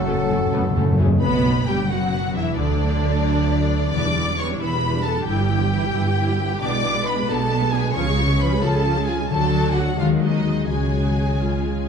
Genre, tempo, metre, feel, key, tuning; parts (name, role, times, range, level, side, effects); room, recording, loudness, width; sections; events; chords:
classical, dramatic, fast romantic movement for symphony orchestra; 89 BPM (dotted quarters); 6/8; straight; B minor; A4 = 440 Hz
dark clarinet; second line; 0.0-1.0 s; C#4; -33 LUFS; left 4 dB
mellow hollow concert flute; second line; 0.0-1.0 s; F#5; -31 LUFS; right 1 dB
warm oboe; second line; 0.0-1.0 s; A4; -34 LUFS; right 2 dB
warm symphonic violin section; second line; 0.0-11.9 s; D4 to D5; -28 LUFS; left 2 dB
mellow bassoon; accompaniment; 0.0-1.0 s; F#3; -32 LUFS; equal
warm French horn section; sustained chords; 0.0-1.1 s; G#3 to C#4; -32 LUFS; left 2 dB
concert harp; arpeggios; 0.0-11.9 s; F#2 to E5; -26 LUFS; left 6 dB
rich symphonic double bass section; bass; 0.0-11.9 s; E1 to D#2; -25 LUFS; right 4 dB
warm symphonic cello section; bass; 0.0-11.9 s; D2 to D#3; -26 LUFS; right 2 dB
timpani; percussion; 0.0-1.1 s; F#2; -22 LUFS; left 1 dB
warm symphonic violin section; melody; 0.1-11.9 s; C#4 to D6; -27 LUFS; left 2 dB
rich symphonic viola section; accompaniment; 0.1-11.9 s; D3 to G#4; -26 LUFS; right 2 dB
wet recital hall reverb, RT60 1.5 s; dark, warm production; -18 LUFS; side -6 dB against mid
0.0-1.2 A section; 1.2-11.9 B section
timpani fill 0.0-1.2
0.0 F#m; 1.2 Bm; 2.6 Bm/D; 3.9 Em7; 5.3 Em/G; 6.6 G#dim/B; 8.0 C#; 9.3 D; 10.0 G#7/D#; 10.7 C#sus4